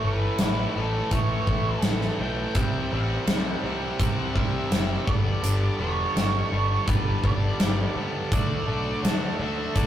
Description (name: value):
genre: classic rock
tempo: 83 BPM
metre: 4/4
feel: straight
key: unclear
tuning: A4 = 440 Hz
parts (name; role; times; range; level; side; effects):
- octave-fuzz lead guitar; melody; 0.0-9.9 s; A4 to G5; -32 LUFS; right 2 dB; distortion
- cranked stack guitar; riff; 0.0-9.9 s; G2 to D4; -30 LUFS; right 2 dB; overdrive
- distorted electric guitar; riff; 0.0-9.9 s; G2 to G4; -33 LUFS; left 5 dB; overdrive
- growling fingered electric bass; bass; 0.0-9.9 s; E1 to D2; -28 LUFS; left 1 dB; overdrive
- huge arena drum kit; drums; 0.4-9.9 s; hi-hat, kick drum, snare drum; -26 LUFS; equal; none
room: moderate booth ambience, RT60 0.2 s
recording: rough rehearsal-room recording, tube saturation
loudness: -22 LUFS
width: side -11 dB against mid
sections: 0.0-9.9 A section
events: none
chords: 0.0 A; 2.6 C; 5.1 G; 8.3 D